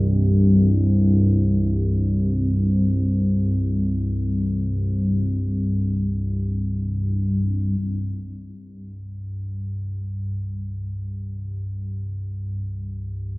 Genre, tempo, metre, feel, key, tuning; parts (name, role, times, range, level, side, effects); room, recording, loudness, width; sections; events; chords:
ambient; free time; A4 = 440 Hz
deep rumbling drone; solo; 0.0-13.4 s; C2 to G2; -21 LUFS; equal; built-in reverb, phaser
moderate lush hall reverb, RT60 2.8 s; dreamy mix soaked in reverb, AM radio sound; -20 LUFS; side -22 dB against mid
0.0-7.8 A section; 7.8-13.4 B section
0.0 C5